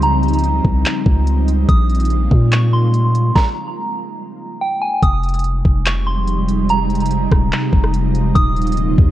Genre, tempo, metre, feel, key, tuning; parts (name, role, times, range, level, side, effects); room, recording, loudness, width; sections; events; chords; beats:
hip hop, atmospheric cloud-rap; 144 BPM; 4/4; half-time; F minor; A4 = 440 Hz
soft synth bell; melody; 0.0-8.7 s; G5 to Eb6; -22 LUFS; right 2 dB; chorus, phaser, low-pass filter, analog delay
ethereal airy pad; sustained chords; 0.0-9.1 s; C3 to F4; -21 LUFS; right 1 dB; ensemble chorus, built-in reverb, sidechain pumping
long sustained 808-style bass; bass; 0.0-9.1 s; Eb1 to Bb2; -16 LUFS; equal
smooth R&B drum kit; drums; 0.0-9.1 s; handclaps, hi-hat, kick drum, rim click, snare drum; -15 LUFS; equal; vintage 12-bit sampler grit
light reverb; echo-heavy mix, cassette tape; -14 LUFS; side -13 dB against mid
0.0-5.0 A section; 5.0-9.1 B section
stop 3.4-5.0
0.0 Dbmaj9#11; 1.7 Bbm7; 5.0 Fm9; 8.4 Eb9sus4
| 0.02 0.44 0.86 1.27 | 1.69 2.11 2.52 2.94 | 3.36 3.77 4.19 4.61 | 5.02 5.44 5.86 6.27 | 6.69 7.11 7.52 7.94 | 8.36 8.77